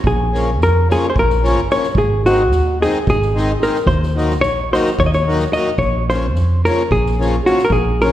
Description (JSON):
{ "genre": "balkan folk, Balkan wedding band", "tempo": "219 BPM (eighths)", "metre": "7/8", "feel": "straight", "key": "Bb minor", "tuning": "A4 = 439 Hz", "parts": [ { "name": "hollow-body short-scale fingered electric bass", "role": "bass", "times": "0.0-8.1 s", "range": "Ab1 to F2", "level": "-18 LUFS", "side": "equal", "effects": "none" }, { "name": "soft-mallet drum kit", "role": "percussion", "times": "0.0-8.1 s", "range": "kick drum, snare drum", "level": "-24 LUFS", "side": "right 1 dB", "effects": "none" }, { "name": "hollow-body jazz guitar", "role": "melody", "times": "0.1-8.1 s", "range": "Gb4 to Eb5", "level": "-17 LUFS", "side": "equal", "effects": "none" }, { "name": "accordion", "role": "accompaniment", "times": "0.3-8.1 s", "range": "Db3 to Eb4", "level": "-21 LUFS", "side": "left 2 dB", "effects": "none" } ], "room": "moderate scoring stage reverb, RT60 1.4 s", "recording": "heard from further back in the room", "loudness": "-13 LUFS", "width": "side -12 dB against mid", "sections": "0.0-8.1 A section", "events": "none", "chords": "0.0 Bbm; 1.9 Ab; 3.9 Ebm; 5.8 Bbm", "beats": "| 0.04 0.31 0.58 0.86 1.13 1.40 1.68 | 1.95 2.22 2.50 2.77 3.04 3.32 3.59 | 3.86 4.14 4.41 4.69 4.96 5.23 5.51 | 5.78 6.05 6.33 6.60 6.88 7.15 7.43 | 7.70 7.97" }